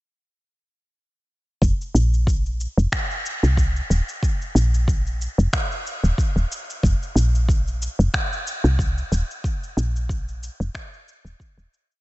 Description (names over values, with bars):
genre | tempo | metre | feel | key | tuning
organic downtempo | 92 BPM | 4/4 | swing 55% on 16ths | unclear | A4 = 440 Hz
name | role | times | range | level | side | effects
woody FM bass | bass | 1.6-11.7 s | Eb1 to C2 | -19 LUFS | equal | tube saturation, sidechain pumping
electronic cabasa and finger snaps | drums | 1.6-12.0 s | none | -30 LUFS | equal | overdrive
electronic kick drum | drums | 1.6-11.5 s | none | -22 LUFS | equal | none
room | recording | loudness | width
little or no reverb | nothing above 8.0 kHz | -20 LUFS | side -19 dB against mid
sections
1.6-12.0 groove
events
fade-out 8.6-12.0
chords
none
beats
| 1.62 2.27 2.92 3.57 | 4.23 4.88 5.53 6.18 | 6.83 7.49 8.14 8.79 | 9.44 10.10 10.75 11.40